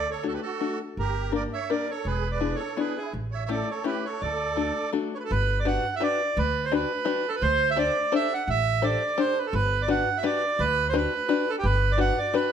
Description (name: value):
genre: musette waltz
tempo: 169 BPM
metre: 3/4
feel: swing 54% on 8ths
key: D major, G major from 5.3 s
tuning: A4 = 443 Hz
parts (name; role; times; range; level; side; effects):
- bandoneon; melody; 0.0-12.5 s; G4 to F#5; -26 LUFS; right 4 dB; none
- musette accordion; second line; 0.0-4.9 s; E4 to C#5; -35 LUFS; right 8 dB; none
- upright bass; bass; 0.0-12.1 s; E1 to D2; -28 LUFS; equal; none
- open-back banjo; accompaniment; 0.2-12.5 s; A3 to C5; -28 LUFS; left 6 dB; none
room: moderate recital hall reverb, RT60 1.3 s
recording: close, detailed microphones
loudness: -23 LUFS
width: side -8 dB against mid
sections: 0.0-5.3 A section; 5.3-12.5 B section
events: none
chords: 0.0 D; 1.0 Gm; 2.1 E7; 3.1 A7; 4.2 D; 5.3 Gmaj7; 7.4 D7sus4; 9.5 Gmaj7